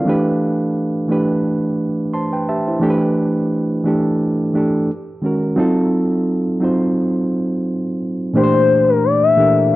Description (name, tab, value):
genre	R&B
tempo	87 BPM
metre	4/4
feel	swing 56% on 16ths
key	unclear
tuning	A4 = 440 Hz
part	reed electric piano	accompaniment	0.0-9.8 s	Bb2 to C6	-16 LUFS	right 1 dB	spring reverb
part	gliding portamento lead	melody	8.4-9.8 s	Bb4 to E5	-13 LUFS	left 5 dB	chorus
room	light reverb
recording	dry, close 1970s-style studio recording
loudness	-15 LUFS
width	side -17 dB against mid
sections	0.0-8.3 A section; 8.3-9.8 B section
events	reed electric piano fill 1.8-2.8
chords	0.1 Gadd9; 4.9 F#add9; 5.6 F7b9; 8.3 Bb6